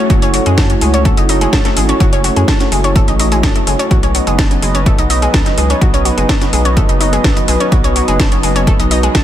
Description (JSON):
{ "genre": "melodic techno", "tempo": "126 BPM", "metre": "4/4", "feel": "straight", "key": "unclear", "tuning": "A4 = 439 Hz", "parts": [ { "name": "dark analog pad", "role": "sustained chords", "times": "0.0-9.2 s", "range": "F#3 to D#5", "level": "-17 LUFS", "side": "equal", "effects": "chorus, sidechain pumping" }, { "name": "analog pluck", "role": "arpeggios", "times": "0.0-9.2 s", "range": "C#3 to A5", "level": "-18 LUFS", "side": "equal", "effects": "chorus, sidechain pumping, ping-pong delay" }, { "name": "round analog bass", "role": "bass", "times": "0.1-9.2 s", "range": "F#1 to F#2", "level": "-16 LUFS", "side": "equal", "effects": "sidechain pumping" }, { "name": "electronic kick drum", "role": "drums", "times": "0.1-9.2 s", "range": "none", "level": "-13 LUFS", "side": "equal", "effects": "none" }, { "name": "techno drum kit", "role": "drums", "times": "0.1-9.2 s", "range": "hi-hat, snare drum", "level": "-20 LUFS", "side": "equal", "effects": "none" } ], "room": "light reverb, digital ambience", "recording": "none", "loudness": "-10 LUFS", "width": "side -11 dB against mid", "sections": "0.0-9.2 A section", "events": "none", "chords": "0.0 F#m7; 3.9 B", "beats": "| 0.10 0.58 1.05 1.53 | 2.00 2.48 2.96 3.43 | 3.91 4.39 4.86 5.34 | 5.81 6.29 6.77 7.24 | 7.72 8.20 8.67 9.15" }